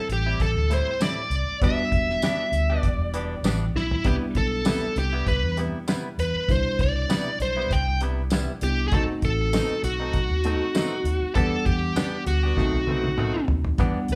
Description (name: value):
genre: straight-eighth soul blues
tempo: 99 BPM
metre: 4/4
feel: swing 54% on 16ths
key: E minor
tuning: A4 = 440 Hz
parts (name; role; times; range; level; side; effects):
- smooth overdriven lead guitar; melody; 0.0-14.2 s; E4 to G5; -29 LUFS; equal; none
- reed electric piano; accompaniment; 0.0-14.2 s; B2 to F#5; -34 LUFS; equal; overdrive
- vintage muted fingered electric bass; bass; 0.1-14.2 s; E1 to E2; -29 LUFS; equal; none
- cloth-damped thuddy drum kit; drums; 0.1-14.2 s; hi-hat, kick drum, snare drum, tambourine, toms; -28 LUFS; equal; none
- direct-recorded clean electric guitar; stabs; 0.3-14.0 s; A2 to G4; -35 LUFS; equal; none
room: moderate large studio reverb, RT60 0.8 s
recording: band playing live in one room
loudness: -24 LUFS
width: mono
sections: 0.0-13.8 A section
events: drum fill 3.8-4.1, 12.6-13.8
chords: 0.0 Am7; 1.6 Em7; 4.1 Cmaj7; 8.9 B7b9; 11.4 Em7; 12.6 B7b9